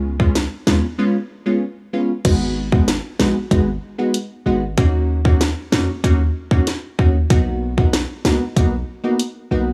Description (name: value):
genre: dancehall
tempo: 95 BPM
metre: 4/4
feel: straight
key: unclear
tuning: A4 = 438 Hz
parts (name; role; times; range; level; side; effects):
- wavetable chord stab; accompaniment; 0.0-9.7 s; Ab3 to Gb4; -23 LUFS; equal; none
- warm 808-style bass; bass; 0.0-9.7 s; Ab1 to F2; -23 LUFS; equal; none
- island pop drum kit; drums; 0.2-9.3 s; crash cymbal, hi-hat, kick drum, snare drum; -20 LUFS; equal; none
room: little or no reverb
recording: dry, gritty hardware recording, small room ambience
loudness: -19 LUFS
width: mono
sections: 0.0-2.2 A section; 2.2-9.7 B section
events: break 1.0-2.2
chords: 0.0 Db7; 2.2 Abm7; 4.8 Ebm7; 7.3 Bmaj7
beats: 0.35 0.99 1.62 | 2.25 2.88 3.51 4.14 | 4.78 5.41 6.04 6.67 | 7.30 7.93 8.56 9.20